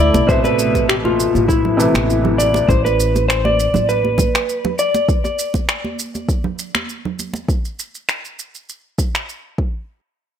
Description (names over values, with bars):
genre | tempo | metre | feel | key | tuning
organic downtempo | 100 BPM | 4/4 | swing 53% on 16ths | A minor | A4 = 439 Hz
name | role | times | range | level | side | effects
electric slide guitar | melody | 0.0-5.1 s | E4 to D5 | -18 LUFS | left 2 dB | vintage 12-bit sampler grit, digital delay
upright bass | bass | 0.0-4.3 s | A1 to C2 | -19 LUFS | equal | none
electronic shaker and finger snaps | drums | 0.1-9.4 s | none | -22 LUFS | right 1 dB | overdrive
congas | percussion | 0.1-7.5 s | none | -24 LUFS | right 4 dB | none
felt-muted upright piano | accompaniment | 0.3-2.7 s | B2 to E5 | -20 LUFS | right 2 dB | sidechain pumping, digital delay
electronic kick drum | drums | 0.3-9.7 s | none | -18 LUFS | equal | overdrive
room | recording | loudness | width
moderate digital room reverb, RT60 1.2 s, studio reverb | none | -15 LUFS | side -8 dB against mid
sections
0.3-9.9 A section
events
none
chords
0.3 Amadd9; 9.6 N.C.